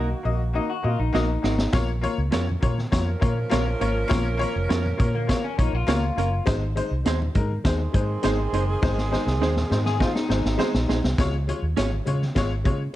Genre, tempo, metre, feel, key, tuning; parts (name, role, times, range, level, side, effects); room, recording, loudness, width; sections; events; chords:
uptempo 1960s-style soul; 102 BPM; 4/4; straight; Db major; A4 = 440 Hz
warm saxophone section; second line; 0.0-10.8 s; Eb3 to Bb4; -31 LUFS; right 4 dB
bright upright piano; accompaniment; 0.0-12.8 s; Ab3 to Eb5; -28 LUFS; left 4 dB
direct-recorded clean electric guitar; stabs; 0.0-11.9 s; Bb3 to Db5; -30 LUFS; right 9 dB
vintage muted fingered electric bass; bass; 0.0-12.9 s; F1 to Db3; -25 LUFS; equal
electric guitar through a small old amp; riff; 0.6-11.0 s; Bb3 to Ab4; -30 LUFS; left 4 dB; wide subtle chorus
vintage drum kit; drums; 1.1-12.8 s; hi-hat, kick drum, snare drum; -25 LUFS; equal; vintage 12-bit sampler grit
congas; percussion; 1.7-12.6 s; -37 LUFS; right 2 dB
small room ambience; dark, warm production; -21 LUFS; side -14 dB against mid
0.0-11.2 A section; 11.2-13.0 B section
drum fill 1.1-1.7, 8.8-11.2
0.0 Ebm; 1.7 Bbm; 6.5 Ab; 11.2 Db